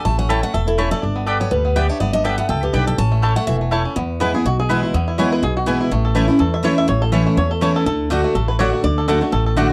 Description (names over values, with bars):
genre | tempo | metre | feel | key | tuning
bluegrass | 246 BPM | 4/4 | swing 55% on 8ths | A mixolydian | A4 = 444 Hz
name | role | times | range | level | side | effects
bluegrass banjo | melody | 0.0-9.7 s | E3 to E5 | -26 LUFS | equal | none
picked steel-string acoustic guitar | accompaniment | 0.0-9.7 s | E2 to A5 | -22 LUFS | equal | none
upright bass | bass | 0.1-9.7 s | E1 to E2 | -23 LUFS | equal | none
mandolin | stabs | 0.3-9.7 s | A3 to A5 | -26 LUFS | equal | slapback echo
room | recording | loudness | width
light reverb | dry, close 1970s-style studio recording | -18 LUFS | mono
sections
0.0-4.0 A section; 4.0-9.7 A section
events
steel-string acoustic guitar solo 0.0-4.0; five-string banjo solo 4.0-9.7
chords
0.1 A; 1.0 G; 3.0 A; 4.0 E; 5.9 A; 7.9 D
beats
| 0.05 0.30 0.54 0.79 | 1.03 1.27 1.52 1.76 | 2.01 2.25 2.50 2.74 | 2.98 3.23 3.47 3.72 | 3.96 4.21 4.45 4.69 | 4.94 5.18 5.43 5.67 | 5.91 6.16 6.40 6.65 | 6.89 7.13 7.38 7.62 | 7.86 8.11 8.35 8.59 | 8.84 9.08 9.32 9.57